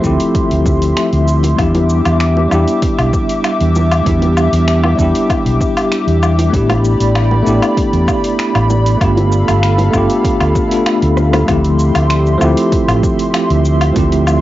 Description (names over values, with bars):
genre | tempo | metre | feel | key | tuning
sunset chillout | 97 BPM | 4/4 | straight | D dorian | A4 = 439 Hz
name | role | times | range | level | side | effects
bell-like tine electric piano | accompaniment | 0.0-14.4 s | F3 to A4 | -15 LUFS | moving between left 4 dB and right 4 dB | fast stereo tremolo, auto-pan, cassette tape, tape echo, plate reverb
airy breathy pad | sustained chords | 0.0-14.4 s | G4 to D6 | -19 LUFS | equal | chorus, cassette tape, plate reverb
fretless electric bass | bass | 0.0-14.4 s | G1 to E2 | -14 LUFS | equal | none
deep house drum kit | drums | 0.0-14.4 s | finger snaps, hi-hat, rim click, shaker, woodblock | -21 LUFS | left 1 dB | overdrive, cassette tape
electronic kick drum | drums | 0.0-14.1 s | none | -18 LUFS | equal | overdrive, cassette tape
bongos | percussion | 1.4-11.5 s | none | -21 LUFS | right 1 dB | none
room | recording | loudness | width
moderate studio reverb, RT60 0.6 s | home recording on cassette, nothing above 7.5 kHz | -10 LUFS | side -15 dB against mid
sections
0.0-11.5 A section; 11.5-14.4 B section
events
drum fill 11.2-11.5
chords
0.0 Dm11; 1.6 Em7; 6.5 A9sus4; 9.0 G9; 11.5 Dm11